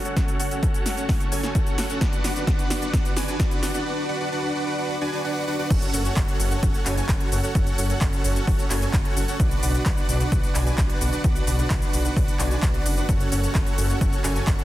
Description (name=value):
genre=EDM, festival progressive house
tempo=130 BPM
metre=4/4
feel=straight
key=F# minor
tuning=A4 = 443 Hz
part: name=dense compressed supersaw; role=riff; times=0.0-14.6 s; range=C#4 to G#5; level=-26 LUFS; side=right 1 dB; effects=sidechain pumping, low-pass filter, tape echo
part: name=big-room dance drum kit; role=drums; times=0.1-14.6 s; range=crash cymbal, handclaps, hi-hat, shaker, snare drum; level=-30 LUFS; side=equal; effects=overdrive
part: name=electronic kick drum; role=drums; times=0.2-14.6 s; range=none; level=-23 LUFS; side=equal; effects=overdrive
part: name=wide detuned saw bass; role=bass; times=5.7-14.5 s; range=F#1 to B1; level=-26 LUFS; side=equal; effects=chorus, sidechain pumping
room=light reverb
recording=dense, heavily limited modern master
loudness=-20 LUFS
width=side -14 dB against mid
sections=0.0-5.7 A section; 5.7-14.6 B section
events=build-up 0.0-5.7; drum fill 0.0-3.9; break 3.9-5.7; drop 5.7-14.6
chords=0.0 F#m; 2.0 Bm; 5.7 F#m; 9.4 Bm; 13.1 F#m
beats=| 0.17 0.63 1.09 1.55 | 2.01 2.47 2.94 3.40 | 3.86 4.32 4.78 5.24 | 5.70 6.17 6.63 7.09 | 7.55 8.01 8.47 8.94 | 9.40 9.86 10.32 10.78 | 11.24 11.70 12.17 12.63 | 13.09 13.55 14.01 14.47